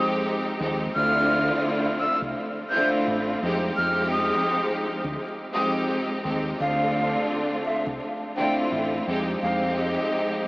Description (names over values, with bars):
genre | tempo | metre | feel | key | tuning
hip hop, boom-bap hip-hop | 85 BPM | 4/4 | swing 58% on 16ths | D minor | A4 = 442 Hz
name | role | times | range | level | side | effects
breathy jazz flute | melody | 0.0-10.3 s | Eb5 to G6 | -27 LUFS | equal | high-pass filter, low-pass filter, tape echo
bright studio string section | accompaniment | 0.0-10.5 s | F2 to G4 | -24 LUFS | equal | cassette tape, high-pass filter, low-pass filter
deep dub fingered electric bass | bass | 0.6-10.0 s | A1 to F2 | -32 LUFS | equal | none
room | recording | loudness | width
wet huge ambient reverb, RT60 8.0 s | dreamy mix soaked in reverb, vinyl crackle, small speaker sound | -22 LUFS | side -24 dB against mid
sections
0.0-6.6 A section; 6.6-10.5 B section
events
none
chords
0.0 Fm9; 0.9 Dm9; 3.4 Fm9; 6.6 Dm9; 9.1 Fm9